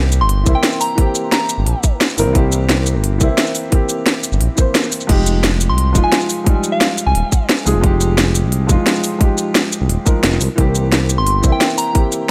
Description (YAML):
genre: liquid drum and bass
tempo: 175 BPM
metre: 4/4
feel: straight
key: F minor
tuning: A4 = 440 Hz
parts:
  - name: warm baby grand piano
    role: accompaniment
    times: 0.0-12.3 s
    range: E3 to C5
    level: -22 LUFS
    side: equal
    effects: tape echo
  - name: smooth synth bass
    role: bass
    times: 0.0-11.5 s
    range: Eb1 to C2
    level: -18 LUFS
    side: equal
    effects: none
  - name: drum and bass drum kit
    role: drums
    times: 0.1-12.2 s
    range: crash cymbal, hi-hat, shaker, snare drum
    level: -19 LUFS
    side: equal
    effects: none
  - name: soft synth bell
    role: melody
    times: 0.2-1.8, 5.7-7.4, 11.2-12.0 s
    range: F5 to C6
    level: -23 LUFS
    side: equal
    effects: chorus, tape echo
  - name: electronic kick drum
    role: drums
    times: 0.5-12.0 s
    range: none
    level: -16 LUFS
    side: equal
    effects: none
room: little or no reverb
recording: none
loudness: -15 LUFS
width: mono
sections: 0.0-12.3 A section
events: none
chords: 0.0 C7; 5.1 Fm9; 10.4 C7